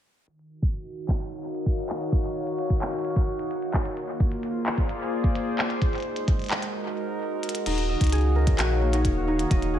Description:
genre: IDM.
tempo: 130 BPM.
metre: 4/4.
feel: straight.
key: Eb dorian.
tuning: A4 = 440 Hz.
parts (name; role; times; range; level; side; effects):
warbly tape-like pad; sustained chords; 0.3-9.8 s; Eb3 to F5; -29 LUFS; equal; chorus, built-in reverb.
glitchy drum kit; drums; 0.3-9.7 s; crash cymbal, handclaps, hi-hat; -32 LUFS; equal; studio reverb, analog delay.
electronic kick drum; drums; 0.6-9.6 s; none; -24 LUFS; equal; studio reverb.
concert harp; arpeggios; 7.7-9.8 s; Bb3 to Eb5; -28 LUFS; left 2 dB; vintage 12-bit sampler grit, low-pass filter, tape echo.
warm sub bass; bass; 7.7-9.8 s; Eb1 to Db2; -24 LUFS; equal; none.
room: light reverb, digital ambience.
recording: echo-heavy mix, low-pass filter.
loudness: -23 LUFS.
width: side -10 dB against mid.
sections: 0.3-7.7 A section; 7.7-9.8 B section.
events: filter sweep 0.3-7.7; break 6.7-7.7; drum fill 7.4.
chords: 0.3 Ebm9; 4.0 Bb9; 5.8 Ab7; 7.7 Ebm9.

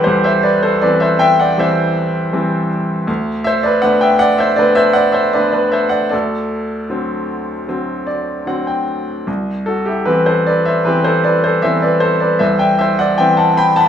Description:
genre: classical, lyrical solo piano.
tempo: 78 BPM.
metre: 4/4.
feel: rubato.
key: C lydian.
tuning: A4 = 442 Hz.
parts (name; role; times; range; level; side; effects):
bright baby grand piano; solo; 0.0-13.9 s; C2 to B5; -12 LUFS; equal; none.
room: light reverb.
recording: studio reverb.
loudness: -13 LUFS.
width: side -9 dB against mid.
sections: 0.0-13.9 A section.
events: grand piano fill 7.7-9.3.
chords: 0.0 Cmaj7; 3.1 Bm7/D; 6.1 D7; 9.3 Cmaj7.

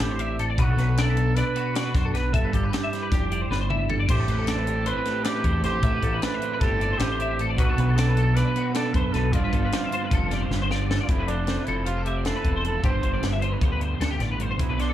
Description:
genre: math rock and midwest emo.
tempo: 308 BPM (eighths).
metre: 9/8.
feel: straight.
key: unclear.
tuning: A4 = 441 Hz.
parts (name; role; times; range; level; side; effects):
mellow trumpet; melody; 0.0-14.9 s; D4 to C5; -30 LUFS; right 2 dB; slapback echo, analog delay.
twelve-string electric guitar; accompaniment; 0.0-14.9 s; F2 to A4; -30 LUFS; right 4 dB; none.
twelve-string electric guitar; arpeggios; 0.0-14.9 s; F#4 to E5; -31 LUFS; left 4 dB; ensemble chorus, slapback echo.
growling fingered electric bass; bass; 0.0-14.9 s; E1 to F#2; -25 LUFS; left 1 dB; overdrive.
crisp fusion drum kit; drums; 0.0-14.9 s; crash cymbal, hi-hat, kick drum, snare drum, toms; -27 LUFS; equal; none.
crunchy overdriven guitar; riff; 4.1-14.9 s; F2 to E4; -33 LUFS; right 1 dB; tremolo, slapback echo.
room: small room ambience.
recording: live gig heard through the venue's PA, club reverb.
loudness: -21 LUFS.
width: side -12 dB against mid.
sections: 0.0-11.1 A section; 11.1-14.9 B section.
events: drum fill 3.5-4.1, 10.5-11.1.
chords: 0.0 Am11; 0.6 Bm7; 2.3 G13; 4.1 Am11; 7.6 Bm7; 9.3 G9sus4; 11.1 Fmaj7; 12.8 G7sus4.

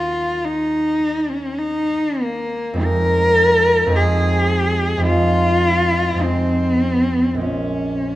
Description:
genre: classical, impressionist duo for cello and harp.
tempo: 46-56 BPM.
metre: 4/4.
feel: rubato.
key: unclear.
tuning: A4 = 440 Hz.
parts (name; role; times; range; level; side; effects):
warm cello; melody; 0.0-8.2 s; Bb3 to Bb4; -17 LUFS; left 1 dB; none.
concert harp; accompaniment; 0.0-8.2 s; Bb1 to Gb4; -20 LUFS; right 1 dB; none.
room: wet recital hall reverb, RT60 1.6 s.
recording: none.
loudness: -16 LUFS.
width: side -15 dB against mid.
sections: 0.0-8.2 A section.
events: none.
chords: 0.0 Ebm6; 2.8 Fm7; 7.4 Bbm9.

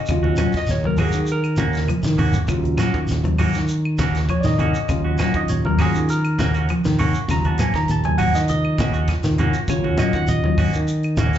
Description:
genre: afrobeat.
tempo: 100 BPM.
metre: 4/4.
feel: straight.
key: Eb dorian.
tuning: A4 = 439 Hz.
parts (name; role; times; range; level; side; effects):
barky tine electric piano; accompaniment; 0.0-11.4 s; Db3 to Db6; -25 LUFS; right 2 dB; phaser, slapback echo.
electric guitar at the edge of break-up; arpeggios; 0.1-11.4 s; C3 to Gb3; -24 LUFS; left 5 dB; lush chorus.
modern bright fingered electric bass; bass; 0.1-11.4 s; Eb2 to Eb3; -21 LUFS; equal; none.
compact cocktail drum kit; drums; 0.1-11.4 s; hi-hat, kick drum, snare drum; -28 LUFS; equal; none.
claves; percussion; 0.1-11.2 s; none; -34 LUFS; left 2 dB; slapback echo.
shekere; percussion; 0.1-11.4 s; none; -27 LUFS; right 1 dB; slapback echo.
clean electric guitar; stabs; 0.2-11.4 s; Bb3 to Gb4; -28 LUFS; right 5 dB; slapback echo.
congas; percussion; 0.2-11.3 s; none; -24 LUFS; right 1 dB; none.
room: small room ambience.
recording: live gig heard through the venue's PA, club reverb, nothing above 7.8 kHz.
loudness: -17 LUFS.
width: side -10 dB against mid.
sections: 0.0-11.4 A section.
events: tine electric piano solo 0.0-11.4; drum fill 1.9-2.5.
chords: 0.0 Ebm7.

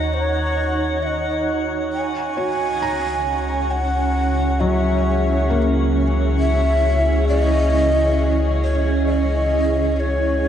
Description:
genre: ambient.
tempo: 67 BPM.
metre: 3/4.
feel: straight.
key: C# dorian.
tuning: A4 = 438 Hz.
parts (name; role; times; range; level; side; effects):
breathy mellow shakuhachi; melody; 0.0-10.5 s; C#5 to G#5; -22 LUFS; equal; diffuse ambient delay.
granular cloud pad; sustained chords; 0.0-10.5 s; C#4 to A#5; -22 LUFS; right 1 dB; built-in reverb.
deep rumbling drone; bass; 0.0-10.5 s; C#2 to D#2; -21 LUFS; equal; built-in reverb.
drifting glass-harmonics texture; texture; 0.0-10.5 s; F#4 to F#5; -32 LUFS; left 2 dB; chorus, built-in reverb.
felt-muted upright piano; arpeggios; 2.4-10.5 s; F#3 to A#5; -27 LUFS; left 2 dB; diffuse ambient delay.
room: moderate huge ambient reverb, RT60 9.1 s.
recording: nothing above 10.5 kHz.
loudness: -17 LUFS.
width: side -9 dB against mid.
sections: 0.0-10.5 A section.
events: fade-out on synth texture 0.0-10.5.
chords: 0.0 D#m7; 1.9 C#m.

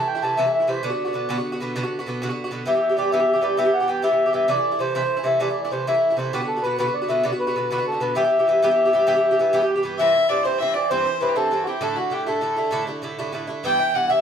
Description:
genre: celtic folk, Celtic slide.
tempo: 131 BPM (dotted quarters).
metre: 12/8.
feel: straight.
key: E minor.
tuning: A4 = 440 Hz.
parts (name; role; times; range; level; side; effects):
mellow accordion; melody; 0.0-14.2 s; F#4 to A5; -20 LUFS; left 1 dB; none.
Irish bouzouki; accompaniment; 0.0-14.2 s; G2 to G4; -25 LUFS; right 2 dB; none.
rich fiddle; second line; 10.0-14.2 s; F#4 to G5; -26 LUFS; left 4 dB; none.
room: wet studio ambience, RT60 0.5 s.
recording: band playing live in one room.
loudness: -19 LUFS.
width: side -8 dB against mid.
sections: 0.0-10.0 A section; 10.0-14.2 B section.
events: none.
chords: 0.0 Am; 0.8 Bm; 2.7 Em; 4.5 Am; 6.3 Bm; 8.2 Em; 10.0 C; 11.8 Dsus2; 13.6 Em.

